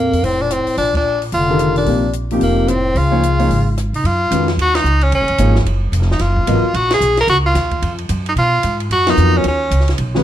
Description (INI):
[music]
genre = modal jazz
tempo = 222 BPM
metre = 4/4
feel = swing 61% on 8ths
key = Bb major, F# major from 4.0 s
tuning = A4 = 436 Hz
[part]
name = edgy tenor saxophone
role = melody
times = 0.0-10.0 s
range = Bb3 to A#4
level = -17 LUFS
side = equal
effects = plate reverb
[part]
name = mellow bass clarinet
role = second line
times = 0.0-3.8 s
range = F2 to D3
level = -21 LUFS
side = left 3 dB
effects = none
[part]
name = upright bass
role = bass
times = 0.0-10.2 s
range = F1 to B2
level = -17 LUFS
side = equal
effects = none
[part]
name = compact cocktail drum kit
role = drums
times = 0.1-10.2 s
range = hi-hat, kick drum, ride cymbal, rim click, snare drum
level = -26 LUFS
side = equal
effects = none
[part]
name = warm concert grand piano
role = accompaniment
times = 1.5-6.6, 9.1-10.2 s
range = C3 to D#5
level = -18 LUFS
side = left 1 dB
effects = none
[sound]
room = moderate studio reverb, RT60 0.8 s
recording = dark, warm production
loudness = -13 LUFS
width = side -12 dB against mid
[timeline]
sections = 0.0-4.0 A section; 4.0-10.2 B section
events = band accent 0.9, 4.7, 6.9, 9.0; break 3.8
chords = 0.0 Bbmaj9; 3.0 Dbadd9; 4.0 F#maj9; 8.4 Bmaj9